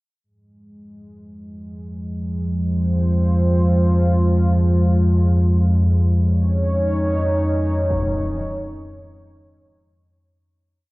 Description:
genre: dark ambient drone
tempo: free time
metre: none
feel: none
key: F minor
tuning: A4 = 440 Hz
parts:
  - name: dark analog pad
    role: sustained chords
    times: 0.2-10.5 s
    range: F2 to Db5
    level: -22 LUFS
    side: equal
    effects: chorus
  - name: deep rumbling drone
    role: drone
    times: 1.7-10.6 s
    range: F2 to F3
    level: -18 LUFS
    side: equal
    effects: built-in reverb, lush chorus
  - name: impact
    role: percussion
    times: 7.9-8.2 s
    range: none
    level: -30 LUFS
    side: equal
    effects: low-pass filter on sfx
room: light reverb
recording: worn, warbling old tape, cassette tape, warbly pitch drift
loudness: -16 LUFS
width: side -21 dB against mid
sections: 0.2-10.5 A section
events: fade-in on analog synth pad 0.2-10.5; fade-in on impacts and reversed cymbals 0.2-10.5; fade-out 5.3-10.5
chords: 0.2 Fm; 5.3 Dbsus2/F

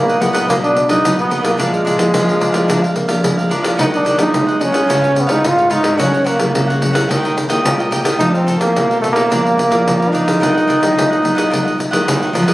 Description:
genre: samba and choro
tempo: 109 BPM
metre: 4/4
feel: straight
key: Eb harmonic minor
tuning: A4 = 440 Hz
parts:
  - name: clear trombone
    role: melody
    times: 0.0-12.1 s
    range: Ab3 to F4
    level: -15 LUFS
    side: right 1 dB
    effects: plate reverb
  - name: nylon-string guitar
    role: accompaniment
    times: 0.0-12.5 s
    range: F2 to G4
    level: -24 LUFS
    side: left 1 dB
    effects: none
  - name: nylon-string guitar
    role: bass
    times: 0.0-12.5 s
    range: Ab2 to Bb3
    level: -20 LUFS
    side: equal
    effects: none
  - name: cavaquinho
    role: accompaniment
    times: 0.1-12.5 s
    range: D4 to G5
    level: -22 LUFS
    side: right 1 dB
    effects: none
  - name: pandeiro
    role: percussion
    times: 0.1-12.5 s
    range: none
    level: -18 LUFS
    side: left 1 dB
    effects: none
room: moderate studio reverb, RT60 0.8 s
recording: recorded on a phone in the room, club reverb, compression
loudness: -12 LUFS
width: side -17 dB against mid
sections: 0.0-12.5 A section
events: none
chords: 0.5 Bmaj7; 1.6 Bb; 3.8 Ebm; 4.9 Db7; 6.0 Gb/Db; 7.1 Eb; 8.2 F7; 9.3 Bb; 10.4 Ebmadd9

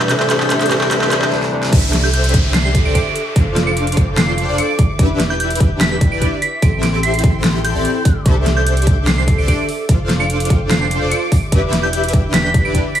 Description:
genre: future bass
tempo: 147 BPM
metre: 4/4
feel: half-time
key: C major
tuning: A4 = 439 Hz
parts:
  - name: soft synth bell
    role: melody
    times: 0.0-13.0 s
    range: G6 to D7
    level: -22 LUFS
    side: right 2 dB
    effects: chorus, sidechain pumping, tape echo
  - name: bell-like tine electric piano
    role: accompaniment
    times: 0.0-1.8 s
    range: B2 to D4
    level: -20 LUFS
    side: equal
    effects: sidechain pumping, tape echo
  - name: dark studio string section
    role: sustained chords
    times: 0.0-13.0 s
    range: A2 to D6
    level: -28 LUFS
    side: left 1 dB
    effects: sidechain pumping
  - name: soft supersaw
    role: riff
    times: 0.0-12.8 s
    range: C4 to G5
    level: -20 LUFS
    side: equal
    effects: ensemble chorus, sidechain pumping
  - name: riser and downlifter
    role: sound effects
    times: 0.0-5.0 s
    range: none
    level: -25 LUFS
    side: equal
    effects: none
  - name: big-room dance drum kit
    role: drums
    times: 0.1-13.0 s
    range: crash cymbal, handclaps, hi-hat, snare drum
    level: -20 LUFS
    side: equal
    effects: overdrive, high-pass filter on snare, high-pass filter on hats, high-pass filter on cymbals
  - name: saturated sub bass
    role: bass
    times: 1.7-12.8 s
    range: E1 to C2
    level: -19 LUFS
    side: equal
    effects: tube saturation, sidechain pumping
  - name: electronic kick drum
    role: drums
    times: 1.7-12.8 s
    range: none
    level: -15 LUFS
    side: equal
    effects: overdrive
room: light reverb, digital ambience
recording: small room ambience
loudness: -13 LUFS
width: side -10 dB against mid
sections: 0.0-1.7 A section; 1.7-13.0 B section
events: build-up 0.0-1.7; drum fill 0.0-1.3, 1.3-1.7; filter sweep on synth bell 0.0-1.7; break 1.3-1.7; drop 1.7-13.0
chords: 0.1 Am7; 1.7 C69; 3.4 F6; 4.8 Em7; 6.6 Am7; 8.3 C69; 9.9 F6; 11.3 Em7

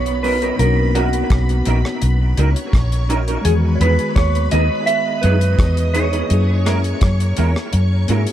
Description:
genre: lovers rock reggae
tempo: 84 BPM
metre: 4/4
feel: straight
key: B major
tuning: A4 = 443 Hz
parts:
  - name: mellow electric guitar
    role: melody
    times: 0.0-8.0 s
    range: F#4 to E5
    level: -21 LUFS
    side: right 2 dB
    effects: tape echo
  - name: string machine, full ensemble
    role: second line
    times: 0.0-8.3 s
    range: B3 to D#6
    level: -28 LUFS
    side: equal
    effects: ensemble chorus, dub echo
  - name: bell-like tine electric piano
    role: accompaniment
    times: 0.0-8.3 s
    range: D#3 to G#4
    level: -26 LUFS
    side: left 4 dB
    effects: medium stereo tremolo, dub echo
  - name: vintage muted fingered electric bass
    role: bass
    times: 0.0-8.3 s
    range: A#1 to G#2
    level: -16 LUFS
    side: equal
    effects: none
  - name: deep reggae drum kit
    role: drums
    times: 0.1-8.3 s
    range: hi-hat, kick drum, rim click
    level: -20 LUFS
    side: equal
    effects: none
  - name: electric guitar through a small old amp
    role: stabs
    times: 0.2-8.2 s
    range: F#3 to B4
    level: -25 LUFS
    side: right 3 dB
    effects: ensemble chorus, dub echo
room: small room ambience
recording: dark, warm production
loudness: -14 LUFS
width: side -11 dB against mid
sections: 0.0-8.3 A section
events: none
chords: 0.0 Bmaj9; 3.4 Emaj7; 6.3 F#9

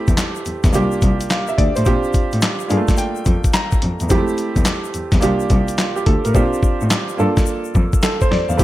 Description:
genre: R&B, new jack swing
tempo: 107 BPM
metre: 4/4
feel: swing 65% on 16ths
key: unclear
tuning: A4 = 440 Hz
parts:
  - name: clear concert grand piano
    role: accompaniment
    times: 0.0-8.6 s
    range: Ab3 to Bb5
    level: -20 LUFS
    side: right 2 dB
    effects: none
  - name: muted cello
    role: bass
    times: 0.1-8.6 s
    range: C2 to Bb2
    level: -20 LUFS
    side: equal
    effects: none
  - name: dusty soul sampler-style drum kit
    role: drums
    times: 0.1-8.6 s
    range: handclaps, hi-hat, kick drum, snare drum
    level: -17 LUFS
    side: equal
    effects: gated reverb
  - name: egg shaker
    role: percussion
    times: 0.1-8.6 s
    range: none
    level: -34 LUFS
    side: left 15 dB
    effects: none
room: small room ambience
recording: none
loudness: -15 LUFS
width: side -15 dB against mid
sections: 0.0-8.6 A section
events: grand piano fill 2.4-4.1; hi-hats muted 6.3-8.6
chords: 0.0 Fmaj7 (rootless); 0.7 C7sus4; 1.9 Bb69 (rootless); 2.7 Gm9; 4.1 Fmaj7 (rootless); 5.2 C7sus4; 6.3 Bb69; 7.2 Gm9 (rootless)

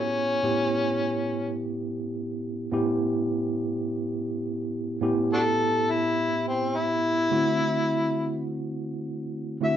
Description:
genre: blues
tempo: 105 BPM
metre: 4/4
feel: swing 53% on 16ths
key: A mixolydian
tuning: A4 = 440 Hz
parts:
  - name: overdriven harmonica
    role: melody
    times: 0.0-1.6, 5.3-9.8 s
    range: C4 to E5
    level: -25 LUFS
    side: left 2 dB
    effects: none
  - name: tine electric piano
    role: accompaniment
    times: 0.0-9.8 s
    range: A2 to G4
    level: -27 LUFS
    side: right 1 dB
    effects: fast stereo tremolo
room: wet studio reverb, RT60 0.8 s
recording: band playing live in one room, nothing above 7.6 kHz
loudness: -24 LUFS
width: side -10 dB against mid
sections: 0.0-9.8 A section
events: harmonica solo 0.0-9.8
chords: 0.0 A7; 7.3 D7

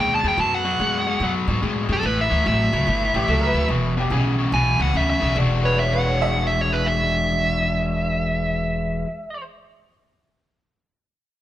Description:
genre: blues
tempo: 145 BPM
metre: 4/4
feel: swing 64% on 8ths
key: E mixolydian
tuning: A4 = 439 Hz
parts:
  - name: dark smooth lead guitar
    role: melody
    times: 0.0-9.4 s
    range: A4 to A5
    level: -22 LUFS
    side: right 1 dB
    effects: overdrive
  - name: overdriven electric guitar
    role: riff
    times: 0.0-9.1 s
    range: E2 to F#4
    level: -24 LUFS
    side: left 2 dB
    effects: none
  - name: upright bass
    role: bass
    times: 0.0-9.0 s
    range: E1 to A2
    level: -24 LUFS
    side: equal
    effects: none
  - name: clear upright piano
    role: second line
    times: 3.2-9.9 s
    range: G4 to E5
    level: -28 LUFS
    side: right 3 dB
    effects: none
room: wet stone room reverb, RT60 1.2 s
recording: band playing live in one room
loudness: -18 LUFS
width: side -13 dB against mid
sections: 0.0-5.4 A section; 5.4-8.7 B section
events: none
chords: 0.0 B5; 2.0 A7; 3.7 E5; 5.4 E9

